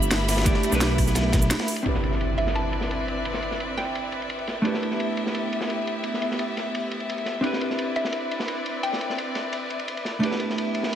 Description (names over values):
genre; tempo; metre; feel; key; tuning
liquid drum and bass; 172 BPM; 4/4; straight; unclear; A4 = 440 Hz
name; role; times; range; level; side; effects
vintage hollow-body jazz guitar; accompaniment; 0.0-11.0 s; A3 to D5; -28 LUFS; right 1 dB; low-pass filter, ping-pong delay
warm chamber string section; sustained chords; 0.0-11.0 s; B3 to B5; -30 LUFS; left 1 dB; none
dark detuned saw bass; bass; 0.0-1.5 s; G1 to B1; -24 LUFS; equal; none
drum and bass drum kit; drums; 0.0-1.8 s; cabasa, hi-hat, rim click, snare drum; -28 LUFS; right 1 dB; overdrive, low-pass filter on hats, low-pass filter on perc, low-pass filter on snare, low-pass filter on room
crunchy breakbeat drum kit; drums; 0.1-11.0 s; ride cymbal, snare drum; -32 LUFS; equal; high-pass filter on cymbals, low-pass filter on cymbals, high-pass filter on snare, low-pass filter on snare, high-pass filter on room, low-pass filter on room
electronic kick drum; drums; 0.5-1.4 s; none; -23 LUFS; equal; overdrive
impact; sound effects; 1.9-3.3 s; none; -29 LUFS; equal; none
hollow square pluck; melody; 2.4-4.0, 8.0-9.2 s; E5 to A5; -32 LUFS; equal; chorus, ping-pong delay
room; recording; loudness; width
light reverb; none; -23 LUFS; side -10 dB against mid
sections
0.0-1.9 A section; 1.9-11.0 B section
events
drop 0.0-1.9; break 1.5-1.9; impact 1.9-3.3; filter sweep on hollow-body jazz guitar 1.9-11.0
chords
0.0 G6; 1.9 Cmaj9; 4.6 G6; 7.4 Cmaj9; 10.2 G6